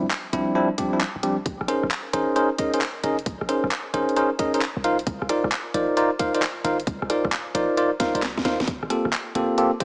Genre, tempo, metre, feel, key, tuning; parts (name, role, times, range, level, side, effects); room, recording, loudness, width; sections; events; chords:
UK garage, two-step garage; 133 BPM; 4/4; swing 67% on 16ths; A4 = 440 Hz
bell-like tine electric piano; stabs; 0.0-9.8 s; F3 to F5; -22 LUFS; equal; fast stereo tremolo, dub echo
short 808-style bass; bass; 0.0-9.5 s; D1 to Eb2; -33 LUFS; equal; sidechain pumping
garage drum kit; drums; 0.1-9.8 s; handclaps, hi-hat, rim click, snare drum; -28 LUFS; equal; studio reverb
electronic kick drum; drums; 0.8-9.8 s; -29 LUFS; equal; studio reverb
light reverb, digital ambience; small speaker sound; -21 LUFS; side -34 dB against mid
0.0-9.8 A section
drum fill 8.0-8.7
0.0 Dm11; 1.5 Bbm11; 4.8 Cm11; 8.7 Gm11